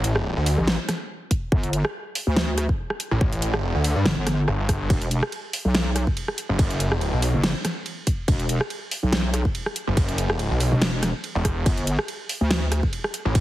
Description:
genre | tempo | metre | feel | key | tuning
heavy wobble dubstep | 142 BPM | 4/4 | swing 54% on 16ths, half-time | E minor | A4 = 442 Hz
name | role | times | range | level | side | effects
snarling distorted saw bass | bass | 0.0-0.6, 3.1-7.3, 9.9-13.4 s | E1 to G2 | -22 LUFS | equal | distortion, overdrive
dubstep drum kit | drums | 0.0-13.4 s | hi-hat, ride cymbal, rim click, snare drum | -26 LUFS | equal | none
wobble bass | bass | 0.6-12.8 s | E1 to D2 | -22 LUFS | equal | chorus, overdrive
electronic kick drum | drums | 1.3-13.4 s | none | -23 LUFS | equal | none
room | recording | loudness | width
digital ambience | heavily compressed radio sound, multiband compression | -21 LUFS | side -15 dB against mid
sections
0.0-13.4 A section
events
none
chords
0.0 Gsus2; 4.9 Esus2; 11.7 Gsus2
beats
0.25 0.68 1.10 | 1.52 1.94 2.37 2.79 | 3.21 3.63 4.05 4.48 | 4.90 5.32 5.75 6.17 | 6.59 7.01 7.43 7.86 | 8.28 8.70 9.12 9.55 | 9.97 10.39 10.82 11.24 | 11.66 12.08 12.51 12.93 | 13.35

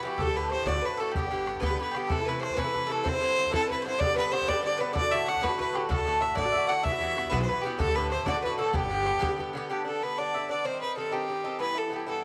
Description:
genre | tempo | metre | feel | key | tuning
celtic folk, Celtic jig | 126 BPM (dotted quarters) | 6/8 | straight | G major | A4 = 440 Hz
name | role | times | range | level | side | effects
bright fiddle | melody | 0.0-12.2 s | G4 to F#5 | -31 LUFS | equal | none
mandolin | second line | 0.0-12.2 s | G4 to F#5 | -38 LUFS | equal | none
Irish bouzouki | accompaniment | 0.0-12.2 s | G2 to G4 | -34 LUFS | equal | none
upright bass | bass | 0.2-1.8, 5.9-9.3 s | G1 to E2 | -37 LUFS | equal | none
bodhran | percussion | 0.2-9.4 s | none | -37 LUFS | equal | none
room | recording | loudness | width
moderate plate reverb, RT60 2.6 s | none | -28 LUFS | mono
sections
0.0-2.1 A section; 2.1-9.7 A section; 9.7-12.2 B section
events
none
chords
0.2 Dsus4; 0.7 D; 1.2 G; 2.1 Am; 3.1 Cadd9; 4.0 G; 5.0 D; 6.8 Emadd9; 7.8 Dsus4; 8.3 D; 8.7 G; 10.6 Cm; 11.6 Em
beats
| 0.20 0.67 | 1.15 1.63 | 2.10 2.58 | 3.06 3.53 | 4.00 4.48 | 4.95 5.43 | 5.90 6.37 | 6.85 7.32 | 7.79 8.27 | 8.74 9.22 | 9.69 10.17 | 10.64 11.12 | 11.60 12.08

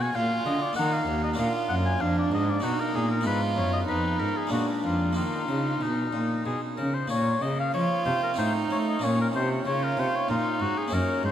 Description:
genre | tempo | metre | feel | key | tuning
classical, baroque-style sonata movement with continuo | 95 BPM | 3/4 | rubato | Eb minor, Bb minor from 7.1 s | A4 = 437 Hz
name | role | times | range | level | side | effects
warm oboe | melody | 0.0-11.3 s | Eb4 to Ab5 | -29 LUFS | left 4 dB | none
warm violin | second line | 0.0-11.3 s | Db4 to Gb4 | -29 LUFS | right 3 dB | none
harpsichord | accompaniment | 0.0-11.3 s | Eb2 to Bb4 | -33 LUFS | left 2 dB | none
warm cello | bass | 0.0-11.3 s | Eb2 to A3 | -28 LUFS | right 1 dB | none
room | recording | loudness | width
wet cathedral reverb, RT60 7.0 s | in a vast, echoing space | -24 LUFS | side -10 dB against mid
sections
0.0-7.1 A section; 7.1-11.3 A section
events
none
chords
0.0 Bb7; 0.8 Eb5; 1.4 Bb; 2.6 B; 3.3 Fm7b5; 4.5 Bb7; 5.2 Eb5; 7.1 Bbm; 8.4 F/A; 9.0 Bbm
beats
0.15 0.77 | 1.38 2.01 2.63 | 3.25 3.88 4.52 | 5.17 5.82 6.47 | 7.12 7.75 8.39 | 9.03 9.66 10.29 | 10.92

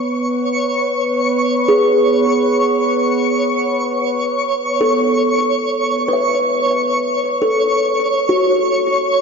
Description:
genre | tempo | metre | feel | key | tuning
ambient | free time | none | none | unclear | A4 = 440 Hz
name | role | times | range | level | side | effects
analog drone | drone | 0.0-9.2 s | B3 to B4 | -21 LUFS | equal | chorus
twinkling granular texture | texture | 0.0-9.2 s | C#5 to C#6 | -18 LUFS | equal | built-in reverb
kalimba | arpeggios | 1.7-9.2 s | F#4 to E5 | -17 LUFS | equal | tape echo
room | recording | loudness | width
wet lush hall reverb, RT60 2.5 s | dark, warm production, nothing above 7.9 kHz | -14 LUFS | side -5 dB against mid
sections
0.0-9.2 A section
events
none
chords
0.0 F#m/B (rootless)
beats
free time

